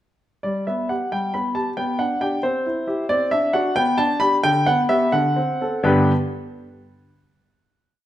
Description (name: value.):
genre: classical-period piano sonatina.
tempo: 82-91 BPM (dotted quarters).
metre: 6/8.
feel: straight.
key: G major.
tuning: A4 = 439 Hz.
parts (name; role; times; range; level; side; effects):
clear grand piano; solo; 0.4-6.1 s; G2 to B5; -18 LUFS; equal; none.
room: wet recital hall reverb, RT60 1.4 s.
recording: none.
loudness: -18 LUFS.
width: side -12 dB against mid.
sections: 0.4-5.8 A section; 5.8-7.2 final chord.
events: slowing down 2.4-5.8.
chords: 0.4 G; 1.8 G/B; 2.4 C; 3.1 D7/C; 3.8 G/B; 4.4 G/D; 5.1 D7; 5.8 G.